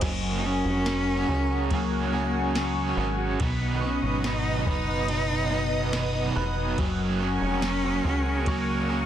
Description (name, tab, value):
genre	dream pop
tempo	71 BPM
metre	4/4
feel	straight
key	unclear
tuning	A4 = 440 Hz
part	crunchy overdriven guitar	accompaniment	0.0-9.1 s	Cb3 to Cb5	-31 LUFS	right 5 dB	tremolo, lush chorus
part	phased analog pad	sustained chords	0.0-9.1 s	Bb4 to Eb6	-32 LUFS	equal	phaser, chorus
part	clean electric guitar	arpeggios	0.0-9.1 s	Ab2 to Cb5	-31 LUFS	left 2 dB	wide subtle chorus, tape echo
part	plucky analog bass	bass	0.0-9.1 s	F1 to Db2	-30 LUFS	equal	none
part	soft vintage rhythm box	drums	0.0-8.7 s	crash cymbal, kick drum, ride cymbal, snare drum, tambourine	-32 LUFS	equal	none
part	clear cello	melody	0.4-9.1 s	Bb3 to Eb4	-30 LUFS	equal	tape echo
part	soft synth bell	texture	0.4-9.1 s	Ab5 to Gb6	-40 LUFS	right 2 dB	chorus, tape echo
room	light reverb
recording	dense, heavily limited modern master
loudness	-23 LUFS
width	side -10 dB against mid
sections	0.0-9.1 A section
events	none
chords	0.0 Gbadd9; 3.4 Cb; 6.8 Gbadd9